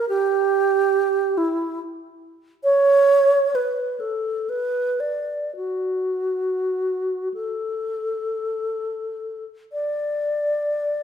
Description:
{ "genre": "classical, free, expressive piece for unaccompanied alto flute", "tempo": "18-48 BPM (dotted quarters)", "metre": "6/8", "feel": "rubato", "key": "D major", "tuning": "A4 = 441 Hz", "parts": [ { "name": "wooden-headed alto flute", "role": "solo", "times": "0.0-11.0 s", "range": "E4 to D5", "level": "-20 LUFS", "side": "right 2 dB", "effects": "none" } ], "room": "wet recital hall reverb, RT60 1.6 s", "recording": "minimal, uncompressed stereo recording", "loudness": "-20 LUFS", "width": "side -8 dB against mid", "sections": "0.0-9.7 A section; 9.7-11.0 A section", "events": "none", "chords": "none" }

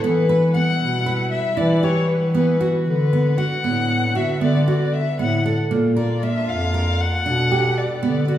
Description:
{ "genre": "contemporary instrumental, chamber music in an uneven meter", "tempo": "233 BPM (eighths)", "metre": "11/8", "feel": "straight", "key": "D major", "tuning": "A4 = 440 Hz", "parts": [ { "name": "dark violin", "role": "melody", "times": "0.0-8.4 s", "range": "B4 to F#5", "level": "-23 LUFS", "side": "left 4 dB", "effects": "none" }, { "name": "warm studio string section", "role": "sustained chords", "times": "0.0-8.4 s", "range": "D3 to F#5", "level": "-30 LUFS", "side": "equal", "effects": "none" }, { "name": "nylon-string guitar", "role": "arpeggios", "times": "0.0-8.4 s", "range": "Bb3 to B4", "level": "-23 LUFS", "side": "right 4 dB", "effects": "none" }, { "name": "mellow bass clarinet", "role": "bass", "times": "0.0-8.4 s", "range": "F2 to E3", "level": "-20 LUFS", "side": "left 1 dB", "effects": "none" } ], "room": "wet recital hall reverb, RT60 1.6 s", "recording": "heard from further back in the room", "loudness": "-17 LUFS", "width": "side -12 dB against mid", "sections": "0.0-8.4 A section", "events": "none", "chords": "0.0 Emadd9; 2.9 D6; 5.7 Bb; 7.3 Gmaj7/B" }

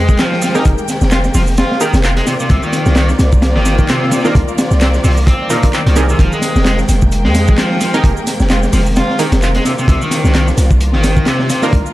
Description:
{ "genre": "breakbeat, breaks", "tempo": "130 BPM", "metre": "4/4", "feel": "swing 56% on 16ths", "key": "F minor", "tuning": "A4 = 440 Hz", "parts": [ { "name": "rich studio string section", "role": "sustained chords", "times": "0.0-11.9 s", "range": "Eb3 to G5", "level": "-21 LUFS", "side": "equal", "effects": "sidechain pumping" }, { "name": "biting overdriven guitar", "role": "riff", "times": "0.0-11.7 s", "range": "Bb2 to F4", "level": "-18 LUFS", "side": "equal", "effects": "tape echo" }, { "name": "warm 808-style bass", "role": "bass", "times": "0.0-11.8 s", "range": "F1 to F2", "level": "-13 LUFS", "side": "equal", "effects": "none" }, { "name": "crunchy breakbeat drum kit", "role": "drums", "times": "0.1-11.9 s", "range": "hi-hat, kick drum, snare drum", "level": "-15 LUFS", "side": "equal", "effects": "none" }, { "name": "garage drum kit", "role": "drums", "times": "0.1-11.9 s", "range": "handclaps, hi-hat, shaker", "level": "-24 LUFS", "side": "right 1 dB", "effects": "none" }, { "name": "filtered dub chord stab", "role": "stabs", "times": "0.5-11.9 s", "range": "D4 to Bb4", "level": "-20 LUFS", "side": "right 2 dB", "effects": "chorus, tape echo" } ], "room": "light reverb", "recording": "dark, warm production, lossy compression artefacts", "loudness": "-10 LUFS", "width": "side -16 dB against mid", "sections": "0.0-11.9 A section", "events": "none", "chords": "0.0 Fm11; 2.3 Cm11; 6.2 Fm11; 9.7 Cm11" }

